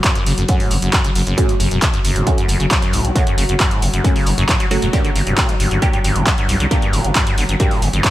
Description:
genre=driving peak-time techno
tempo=135 BPM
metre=4/4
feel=straight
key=F# phrygian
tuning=A4 = 440 Hz
part: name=acid bass, saw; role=riff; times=0.0-8.1 s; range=F#2 to F#3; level=-21 LUFS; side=equal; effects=lush chorus, sidechain pumping, digital delay
part: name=analog drone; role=drone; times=0.0-8.1 s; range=F#3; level=-26 LUFS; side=left 1 dB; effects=chorus, sidechain pumping
part: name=cloth-damped thuddy drum kit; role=drums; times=0.0-8.1 s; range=hi-hat, snare drum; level=-33 LUFS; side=right 1 dB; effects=none
part: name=electronic kick drum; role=drums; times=0.0-8.1 s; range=none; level=-17 LUFS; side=equal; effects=none
part: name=punchy analog drum machine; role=drums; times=0.0-8.1 s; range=handclaps, hi-hat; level=-21 LUFS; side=equal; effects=none
part: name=growling FM bass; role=bass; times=0.3-8.0 s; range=E1 to B#1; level=-19 LUFS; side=equal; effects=sidechain pumping
part: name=filtered dub chord stab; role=stabs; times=0.5-7.7 s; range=A3 to G4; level=-26 LUFS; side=right 3 dB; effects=phaser, sidechain pumping, digital delay
room=light reverb, digital ambience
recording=bright 1980s-style digital production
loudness=-14 LUFS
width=side -15 dB against mid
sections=0.0-8.1 A section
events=none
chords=0.0 F#m; 4.9 Gm

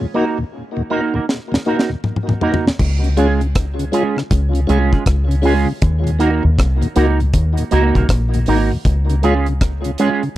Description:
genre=roots reggae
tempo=79 BPM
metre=4/4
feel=swing 64% on 16ths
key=Db major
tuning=A4 = 442 Hz
part: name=mellow tonewheel organ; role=accompaniment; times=0.0-10.3 s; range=Eb2 to Gb4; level=-21 LUFS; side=left 2 dB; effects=slow rotary speaker, tape echo
part: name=electric guitar with an envelope filter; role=accompaniment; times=0.1-10.2 s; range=Ab3 to Bb4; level=-20 LUFS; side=right 5 dB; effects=analog chorus, tape echo
part: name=deep reggae drum kit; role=drums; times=1.3-10.4 s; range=crash cymbal, hi-hat, kick drum, rim click, snare drum, toms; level=-18 LUFS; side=equal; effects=none
part: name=deep dub fingered electric bass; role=bass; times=2.8-9.9 s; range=Ab1 to Eb2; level=-16 LUFS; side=equal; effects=none
room=small room ambience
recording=dry, close 1970s-style studio recording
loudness=-14 LUFS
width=side -14 dB against mid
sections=0.0-2.8 A section; 2.8-10.4 B section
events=break 0.0-2.8; drum fill 1.3-2.8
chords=0.0 Ebm; 2.8 Db; 5.8 Ebm; 8.9 Db

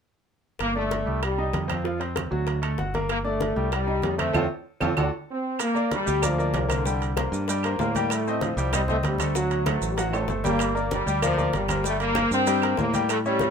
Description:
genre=latin, salsa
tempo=192 BPM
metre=4/4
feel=straight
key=G minor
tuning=A4 = 437 Hz
part: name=bright trombone section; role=melody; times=0.6-13.5 s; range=D3 to C4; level=-26 LUFS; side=left 1 dB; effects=none
part: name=modern bright fingered electric bass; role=bass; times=0.6-13.5 s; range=G1 to A2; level=-28 LUFS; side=equal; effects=none
part: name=bongos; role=percussion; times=0.6-13.5 s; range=none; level=-35 LUFS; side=left 5 dB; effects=none
part: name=claves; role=percussion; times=0.6-13.2 s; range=none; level=-36 LUFS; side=right 9 dB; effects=none
part: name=congas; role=percussion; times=0.6-13.5 s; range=none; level=-33 LUFS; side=right 1 dB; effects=none
part: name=timbales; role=percussion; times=0.6-13.5 s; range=none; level=-34 LUFS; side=right 6 dB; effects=none
part: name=bright baby grand piano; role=accompaniment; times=0.8-13.5 s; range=F3 to G5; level=-28 LUFS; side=left 1 dB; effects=none
part: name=maracas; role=percussion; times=5.6-13.5 s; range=none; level=-37 LUFS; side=right 7 dB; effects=none
room=moderate studio reverb, RT60 0.5 s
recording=minimal, uncompressed stereo recording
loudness=-22 LUFS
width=side -6 dB against mid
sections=0.6-5.6 A section; 5.6-13.5 B section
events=band accent 4.4-5.6; drum fill 4.7-5.6, 10.1-10.6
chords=0.6 G5; 1.2 Cm; 1.9 F5; 2.5 D; 3.1 Gm; 3.7 Cm; 4.4 F; 5.0 D7; 5.6 Gm7; 6.9 Csus2; 8.1 Am7b5; 9.3 D7; 10.6 Gm7; 11.8 C5/G

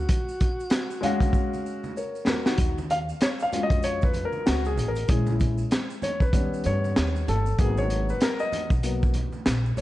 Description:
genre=hip hop, jazz-hop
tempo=96 BPM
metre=4/4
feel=swing 60% on 16ths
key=Eb minor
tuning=A4 = 441 Hz
part: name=mellow alto saxophone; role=melody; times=0.0-1.7 s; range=Gb4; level=-34 LUFS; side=right 1 dB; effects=none
part: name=upright bass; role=bass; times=0.0-9.8 s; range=G1 to G2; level=-27 LUFS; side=equal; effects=none
part: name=crunchy breakbeat drum kit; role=drums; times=0.1-9.8 s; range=hi-hat, kick drum, snare drum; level=-25 LUFS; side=equal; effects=none
part: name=maracas and congas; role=percussion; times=0.1-9.8 s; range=none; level=-39 LUFS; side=right 4 dB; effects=none
part: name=dark grand piano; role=accompaniment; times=1.0-9.8 s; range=Gb3 to F5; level=-28 LUFS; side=left 2 dB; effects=none
room=light reverb, studio reverb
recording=dark, warm production, nothing above 10.4 kHz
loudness=-22 LUFS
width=side -16 dB against mid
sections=0.0-2.6 A section; 2.6-9.8 B section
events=drum fill 1.3-2.6; grand piano solo 2.6-9.8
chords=0.0 Ebm11 (rootless); 2.6 Ebm11; 5.1 Bbm7b5; 6.3 Ebaug7; 7.6 Abm9

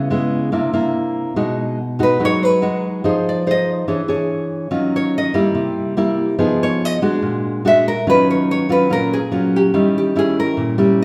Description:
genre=bossa nova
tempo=143 BPM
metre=4/4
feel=straight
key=Eb phrygian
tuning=A4 = 440 Hz
part: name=nylon-string guitar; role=accompaniment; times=0.0-11.0 s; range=Bb2 to C#5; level=-19 LUFS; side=equal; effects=none
part: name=nylon-string guitar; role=melody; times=2.0-11.0 s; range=G4 to Fb5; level=-20 LUFS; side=equal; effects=none
room=wet large studio reverb, RT60 1.4 s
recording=band playing live in one room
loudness=-18 LUFS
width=mono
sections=0.0-8.1 A section; 8.1-11.0 B section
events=nylon-string guitar solo 0.0-8.1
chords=0.0 Dbm7; 0.5 C9; 1.4 B6; 3.0 Fm7; 3.9 E6; 4.7 Ebm9; 5.6 C7; 6.4 Fm7b5; 7.2 Bbaug7; 8.1 Ebm9; 9.7 Eb7b9

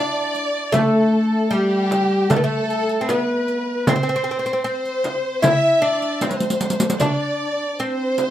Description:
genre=Turkish makam ensemble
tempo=76 BPM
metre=4/4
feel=straight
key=unclear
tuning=A4 = 439 Hz
part: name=oud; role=melody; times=0.0-8.3 s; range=G3 to E4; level=-20 LUFS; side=left 1 dB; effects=plate reverb
part: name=warm kamancheh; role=second line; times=0.0-8.3 s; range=G4 to E5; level=-29 LUFS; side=left 2 dB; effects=plate reverb
part: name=warm studio violin section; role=second line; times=0.0-8.3 s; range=G4 to E5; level=-24 LUFS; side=right 1 dB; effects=plate reverb
part: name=riq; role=percussion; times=0.3-8.3 s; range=none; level=-24 LUFS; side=equal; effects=none
part: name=frame drum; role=percussion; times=0.7-8.3 s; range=none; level=-23 LUFS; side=right 2 dB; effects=none
room=moderate studio reverb, RT60 0.6 s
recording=rough home demo mix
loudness=-17 LUFS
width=side -12 dB against mid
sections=0.0-8.3 A section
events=drum fill 6.2-7.0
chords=none

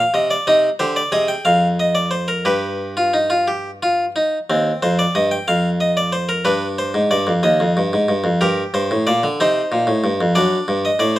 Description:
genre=classical, baroque-style 3-part fugue for harpsichord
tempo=61 BPM (dotted quarters)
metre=6/8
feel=straight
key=C minor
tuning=A4 = 440 Hz
part: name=harpsichord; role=solo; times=0.0-11.2 s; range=Eb2 to G5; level=-15 LUFS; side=equal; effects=none
room=light reverb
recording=close, detailed microphones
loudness=-16 LUFS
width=side -15 dB against mid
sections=0.0-4.5 A section; 4.5-11.2 B section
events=none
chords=0.5 Cm; 1.5 Ddim/F; 2.5 G; 4.5 Cm/Eb; 5.5 F5; 6.5 G7; 7.5 Ebmaj9; 8.4 Gm; 9.4 Cm; 10.4 D/F#

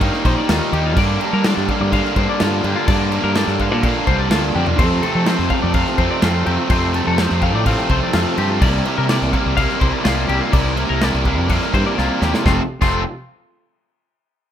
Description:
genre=math rock and midwest emo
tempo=125 BPM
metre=4/4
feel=straight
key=F major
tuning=A4 = 440 Hz
part: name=twelve-string electric guitar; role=arpeggios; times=0.0-13.0 s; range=F4 to F5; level=-24 LUFS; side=left 8 dB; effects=lush chorus
part: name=cranked stack guitar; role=riff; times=0.0-13.0 s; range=F2 to E4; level=-19 LUFS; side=right 1 dB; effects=overdrive
part: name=fuzz fingered electric bass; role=bass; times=0.0-13.0 s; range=F1 to G3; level=-20 LUFS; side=equal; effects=overdrive
part: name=modern studio drum kit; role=drums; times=0.0-12.9 s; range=crash cymbal, kick drum, snare drum, toms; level=-21 LUFS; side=equal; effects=none
room=studio reverb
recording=rough home demo mix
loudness=-15 LUFS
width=side -10 dB against mid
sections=0.0-12.5 A section; 12.5-14.4 B section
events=drum fill 4.6, 12.0-12.5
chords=0.0 Ebadd9; 1.0 Gm7; 4.8 F69; 8.6 C9sus4; 12.5 F

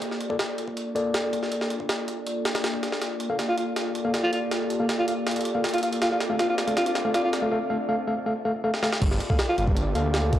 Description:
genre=drum and bass, jungle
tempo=160 BPM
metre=4/4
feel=straight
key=G minor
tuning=A4 = 440 Hz
part: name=warbly tape-like pad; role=sustained chords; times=0.0-10.4 s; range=Bb3 to D5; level=-30 LUFS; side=equal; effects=chorus, built-in reverb
part: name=jungle sampler-style drum kit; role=drums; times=0.0-10.4 s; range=crash cymbal, hi-hat, kick drum, snare drum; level=-28 LUFS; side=equal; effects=high-pass filter on kick, high-pass filter on hats, high-pass filter on snare, high-pass filter on cymbals, high-pass filter on room
part: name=tine electric piano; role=stabs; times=0.3-10.4 s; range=A3 to F5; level=-29 LUFS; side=left 1 dB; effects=low-pass filter, dub echo
part: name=breathy alto saxophone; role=melody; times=3.5-9.6 s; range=F4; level=-28 LUFS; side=equal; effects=dub echo
part: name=detuned saw bass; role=bass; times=9.0-10.4 s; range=G1 to D2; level=-25 LUFS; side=equal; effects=none
room=moderate plate reverb, RT60 1.8 s, digital ambience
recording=dry, gritty hardware recording, cassette tape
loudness=-23 LUFS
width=side -12 dB against mid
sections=0.0-9.0 A section; 9.0-10.4 B section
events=build-up 0.0-9.0; filter sweep on ambient pad 0.0-9.0; filter sweep on tine electric piano 0.0-9.0; drum fill 3.0-7.5, 8.7; break 7.5-9.0; drop 9.0-10.4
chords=0.0 Bbmaj7; 3.0 Gm9; 6.0 Dm7; 9.0 Gm9

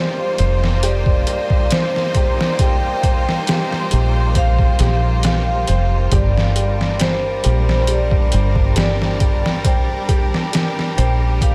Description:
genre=trip hop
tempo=68 BPM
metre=4/4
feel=swing 53% on 16ths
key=G minor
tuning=A4 = 440 Hz
part: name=vibraphone with medium mallets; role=melody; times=0.0-11.5 s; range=C5 to G5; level=-26 LUFS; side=equal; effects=tape echo
part: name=bright studio violin section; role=sustained chords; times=0.0-11.5 s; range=G3 to C5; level=-28 LUFS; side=equal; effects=none
part: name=felt-muted upright piano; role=arpeggios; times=0.0-11.5 s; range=G4 to C5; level=-30 LUFS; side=equal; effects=tape echo
part: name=wind-like tuned noise texture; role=texture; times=0.1-11.5 s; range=G3 to G4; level=-35 LUFS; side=equal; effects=none
part: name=deep dub fingered electric bass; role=bass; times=0.4-11.5 s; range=F1 to Bb1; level=-20 LUFS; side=equal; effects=none
part: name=trip hop sampler-style drum kit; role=drums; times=0.4-11.5 s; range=hi-hat, kick drum, snare drum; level=-21 LUFS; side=equal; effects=overdrive
room=moderate huge ambient reverb, RT60 7.8 s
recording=dreamy mix soaked in reverb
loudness=-17 LUFS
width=mono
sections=0.0-11.5 A section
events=none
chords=0.0 F7sus4; 6.1 Gm7

